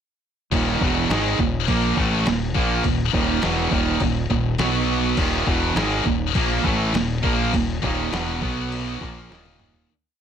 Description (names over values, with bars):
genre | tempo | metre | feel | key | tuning
heavy metal | 102 BPM | 4/4 | straight | Eb phrygian | A4 = 440 Hz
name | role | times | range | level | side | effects
distorted electric guitar | riff | 0.5-9.9 s | Eb2 to B3 | -23 LUFS | right 7 dB | distortion
heavy high-gain guitar | riff | 0.5-9.9 s | Eb2 to B3 | -25 LUFS | left 15 dB | distortion
growling fingered electric bass | bass | 0.5-9.8 s | Eb1 to B1 | -26 LUFS | left 1 dB | overdrive
lo-fi sampler-style drum kit | drums | 0.5-9.9 s | crash cymbal, kick drum, snare drum, toms | -26 LUFS | left 1 dB | none
room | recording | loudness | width
little or no reverb | none | -19 LUFS | side -8 dB against mid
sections
0.5-9.9 riff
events
fade-out 7.5-9.9; drum fill 9.3-9.9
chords
0.5 Eb5; 4.6 B5; 5.2 Eb5; 8.4 B5; 9.0 Eb5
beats
| 0.52 1.10 1.68 2.26 | 2.84 3.42 4.01 4.59 | 5.18 5.76 6.35 6.94 | 7.53 8.12 8.71 9.30